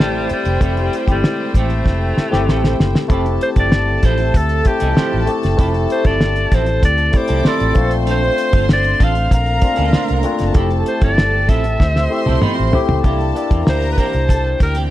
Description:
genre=lush 1970s-style soul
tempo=96 BPM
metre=4/4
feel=straight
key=F major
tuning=A4 = 440 Hz
part: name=bright alto saxophone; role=melody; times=0.0-14.8 s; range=G3 to F5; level=-20 LUFS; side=equal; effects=none
part: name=clear studio string section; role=second line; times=0.0-14.9 s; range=E4 to D6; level=-25 LUFS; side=right 1 dB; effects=none
part: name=barky tine electric piano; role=accompaniment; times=0.0-14.9 s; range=Ab3 to G4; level=-21 LUFS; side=left 4 dB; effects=lush chorus
part: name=semi-hollow electric guitar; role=riff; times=0.0-14.9 s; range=E3 to C5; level=-26 LUFS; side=right 7 dB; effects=harmonic tremolo
part: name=vintage muted fingered electric bass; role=bass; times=0.0-14.9 s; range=F1 to E2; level=-19 LUFS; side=equal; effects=none
part: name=cloth-damped thuddy drum kit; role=drums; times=0.0-14.9 s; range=hi-hat, kick drum, snare drum, toms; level=-16 LUFS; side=equal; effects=none
room=little or no reverb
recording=dark, warm production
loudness=-13 LUFS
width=side -14 dB against mid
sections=0.0-3.1 A section; 3.1-13.0 B section; 13.0-14.9 C section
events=drum fill 1.9-3.1, 11.8-13.0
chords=0.0 Fmaj9; 3.1 Fmaj7; 7.8 Bbmaj7; 10.6 Fmaj7; 13.0 C7

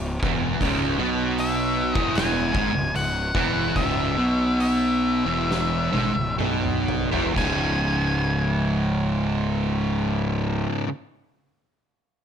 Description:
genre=stoner and doom metal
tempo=60-79 BPM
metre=4/4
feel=straight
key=C# minor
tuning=A4 = 442 Hz
part: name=fuzz guitar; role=riff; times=0.0-10.9 s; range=C#2 to B3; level=-23 LUFS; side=right 1 dB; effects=distortion
part: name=fuzz fingered electric bass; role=bass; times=0.0-10.6 s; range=C#1 to B1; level=-28 LUFS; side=equal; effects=overdrive
part: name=oversized low-tuned drum kit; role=drums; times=0.2-7.6 s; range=crash cymbal, hi-hat, kick drum, snare drum, toms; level=-29 LUFS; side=equal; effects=none
part: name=octave-fuzz lead guitar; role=melody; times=1.4-10.7 s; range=E5 to G#5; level=-28 LUFS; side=left 2 dB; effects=distortion
room=studio reverb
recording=none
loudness=-21 LUFS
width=side -8 dB against mid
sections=0.0-7.4 A section; 7.4-11.3 B section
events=slowing down 0.6-7.4; drum fill 5.5-7.4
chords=0.0 C#m; 7.4 C#5

